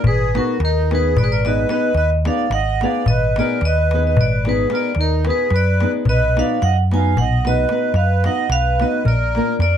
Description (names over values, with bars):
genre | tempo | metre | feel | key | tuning
balkan folk, Balkan wedding band | 220 BPM (eighths) | 11/8 | straight | unclear | A4 = 440 Hz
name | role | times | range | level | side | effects
vibraphone with hard mallets | melody | 0.0-9.8 s | Bb4 to Ab5 | -21 LUFS | equal | none
accordion | second line | 0.0-9.8 s | Eb4 to F5 | -25 LUFS | right 3 dB | light tremolo tuning
hollow-body short-scale fingered electric bass | bass | 0.0-9.8 s | Ab1 to Gb2 | -18 LUFS | equal | none
darbuka | percussion | 0.0-9.7 s | none | -22 LUFS | left 2 dB | none
nylon-string guitar | accompaniment | 0.3-9.6 s | Bb3 to Cb5 | -22 LUFS | left 1 dB | none
room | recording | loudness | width
moderate small room reverb, RT60 0.6 s | dark, warm production | -15 LUFS | side -9 dB against mid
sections
0.0-9.8 A section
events
none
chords
0.1 Abm; 6.1 B; 9.1 Bb